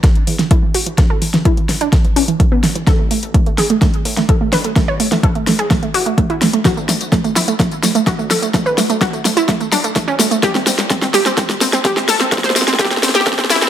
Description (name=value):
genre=progressive house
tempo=127 BPM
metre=4/4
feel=straight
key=unclear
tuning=A4 = 440 Hz
part: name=analog pluck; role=arpeggios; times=0.0-13.7 s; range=E3 to C#5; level=-17 LUFS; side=right 2 dB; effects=chorus, sidechain pumping, dub echo
part: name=deep house drum kit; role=drums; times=0.0-13.7 s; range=hi-hat, snare drum, tambourine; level=-17 LUFS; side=left 1 dB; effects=overdrive
part: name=electronic kick drum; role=drums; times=0.0-13.4 s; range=none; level=-15 LUFS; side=equal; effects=overdrive
part: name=dark detuned saw bass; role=bass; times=0.3-13.6 s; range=D1 to A2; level=-34 LUFS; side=equal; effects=none
room=light reverb, digital ambience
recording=high-pass filter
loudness=-12 LUFS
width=side -10 dB against mid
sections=0.0-13.7 A section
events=build-up 0.0-13.7; drum fill 0.0-13.7; filter sweep on synth arpeggio sound 0.0-13.7; filter sweep 0.0-13.7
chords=0.0 N.C.; 2.9 A5; 6.7 D5; 10.4 C5